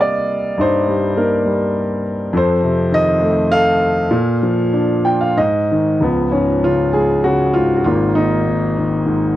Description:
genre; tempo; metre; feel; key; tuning
classical, lyrical solo piano; 89-103 BPM; 3/4; rubato; Db mixolydian from 6.0 s; A4 = 443 Hz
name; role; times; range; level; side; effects
dark concert grand piano; solo; 0.0-9.4 s; Ab1 to G5; -14 LUFS; equal; none
room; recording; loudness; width
little or no reverb; dry, gritty hardware recording; -14 LUFS; side -14 dB against mid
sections
0.0-6.0 A section; 6.0-9.4 B section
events
grand piano fill 4.7-6.0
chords
0.0 Cm7; 2.3 F7; 4.1 Bbmaj7; 5.4 Ab5; 6.0 Db; 7.9 Absus2

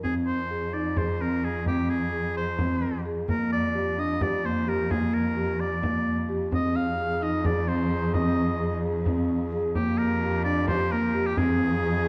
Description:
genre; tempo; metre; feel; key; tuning
contemporary instrumental, chamber music in an uneven meter; 260 BPM (eighths); 7/8; straight; F dorian; A4 = 439 Hz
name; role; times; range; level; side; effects
clear oboe; melody; 0.0-12.1 s; G4 to F5; -33 LUFS; equal; none
vibraphone with soft mallets; arpeggios; 0.0-12.1 s; Bb3 to Ab4; -30 LUFS; equal; none
rich cello; bass; 0.0-12.1 s; F2; -32 LUFS; equal; none
frame drum; percussion; 0.0-11.6 s; none; -35 LUFS; equal; none
warm woodwind section; sustained chords; 6.5-12.1 s; F3 to Ab4; -39 LUFS; equal; none
room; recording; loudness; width
wet concert hall reverb, RT60 1.7 s; dark, warm production; -26 LUFS; mono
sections
0.0-12.1 A section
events
none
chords
0.0 Fm; 3.3 Gm/F; 6.5 Fm7; 9.8 Gm/F; 11.4 Fm7

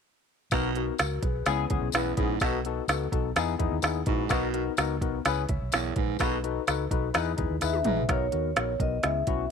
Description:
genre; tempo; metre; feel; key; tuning
uptempo 1960s-style soul; 127 BPM; 4/4; straight; B major; A4 = 441 Hz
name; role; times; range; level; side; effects
barky tine electric piano; accompaniment; 0.5-9.4 s; B3 to E5; -30 LUFS; left 14 dB; lush chorus
growling baritone saxophone; riff; 0.5-8.0 s; E2 to B2; -32 LUFS; right 14 dB; none
vintage muted fingered electric bass; bass; 0.5-9.5 s; A#1 to E2; -32 LUFS; right 2 dB; none
organic electronic drum kit; drums; 0.5-9.4 s; hi-hat, kick drum, snare drum, toms; -28 LUFS; right 2 dB; overdrive
tambourine; percussion; 0.5-7.7 s; none; -40 LUFS; left 16 dB; none
vibraphone with soft mallets; melody; 7.6-9.5 s; C#5 to E5; -30 LUFS; equal; none
room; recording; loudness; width
little or no reverb; 1960s-style stereo with parts hard left and right; -25 LUFS; side -6 dB against mid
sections
0.5-8.1 A section; 8.1-9.5 B section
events
drum fill 7.6-8.1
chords
0.5 Bmaj7; 1.5 C#m7; 2.4 B7; 3.4 Emaj7; 4.3 Bmaj7; 5.3 C#m7; 6.2 B7; 7.1 Emaj7; 8.1 Bmaj7

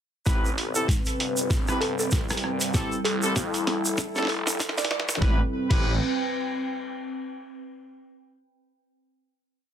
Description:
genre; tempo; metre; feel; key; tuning
glitch hop; 97 BPM; 4/4; swing 57% on 16ths; A minor; A4 = 440 Hz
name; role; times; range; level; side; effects
dark analog pad; sustained chords; 0.3-5.5 s; G3 to B4; -34 LUFS; left 1 dB; chorus, sidechain pumping
clear horn section; stabs; 0.3-5.9 s; C4 to B4; -30 LUFS; equal; vintage 12-bit sampler grit, sidechain pumping, low-pass filter, digital delay
phased detuned saw bass; bass; 0.3-6.0 s; F1 to F2; -31 LUFS; equal; phaser, tube saturation, high-pass filter
boom bap sampler-style drum kit; drums; 0.3-5.8 s; crash cymbal, hi-hat, rim click, snare drum; -30 LUFS; equal; none
electronic kick drum; drums; 0.3-5.8 s; none; -25 LUFS; equal; none
egg shaker; percussion; 0.3-5.2 s; none; -31 LUFS; right 1 dB; none
warbly tape-like pad; texture; 0.7-7.7 s; C4 to G5; -32 LUFS; right 1 dB; chorus, built-in reverb, sidechain pumping
woody wave-folded pluck; melody; 1.8-5.0 s; A4 to D5; -31 LUFS; right 1 dB; chorus, digital delay
room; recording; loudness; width
moderate small room reverb, RT60 0.5 s; dense, heavily limited modern master, high-pass filter; -23 LUFS; side -9 dB against mid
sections
0.3-5.2 build; 5.2-7.7 final chord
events
build-up 0.3-5.2; drum fill 0.3-5.2; filter sweep 0.3-5.2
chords
0.3 Am9; 2.7 Fmaj9; 5.2 Am9

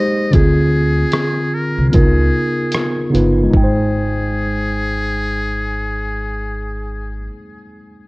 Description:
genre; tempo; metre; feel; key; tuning
lo-fi hip hop; 75 BPM; 4/4; swing 59% on 16ths; Ab major; A4 = 440 Hz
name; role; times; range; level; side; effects
trumpet with metal mute; melody; 0.0-7.3 s; Ab4 to Eb5; -24 LUFS; left 1 dB; none
tine electric piano; accompaniment; 0.0-8.1 s; Db3 to G5; -18 LUFS; equal; medium stereo tremolo, cassette tape
upright bass; bass; 0.3-7.3 s; G1 to D2; -19 LUFS; equal; none
lo-fi sampler-style drum kit; drums; 0.3-3.8 s; hi-hat, kick drum, rim click; -16 LUFS; equal; none
room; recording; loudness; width
light reverb; worn, warbling old tape, cassette tape, warbly pitch drift; -14 LUFS; side -23 dB against mid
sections
0.0-3.5 A section; 3.5-6.7 B section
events
none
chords
0.3 Dm7b5; 1.9 Db13; 3.5 Abmaj7

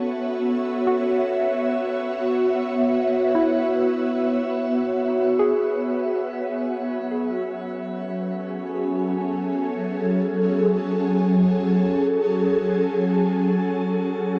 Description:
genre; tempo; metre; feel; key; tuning
ambient; free time; none; none; F# minor; A4 = 440 Hz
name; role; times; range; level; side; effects
ethereal airy pad; sustained chords; 0.0-14.4 s; F#3 to E5; -23 LUFS; equal; ensemble chorus, built-in reverb, phaser, shimmer reverb
soft round pluck; arpeggios; 0.0-7.2 s; B3 to G#4; -31 LUFS; equal; chorus, tape echo, shimmer reverb
room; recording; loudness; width
wet cathedral reverb, RT60 5.2 s; worn, warbling old tape, cassette tape, warbly pitch drift; -23 LUFS; mono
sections
0.0-6.7 A section; 6.7-14.4 B section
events
none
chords
0.0 B9sus4; 6.7 F#m7

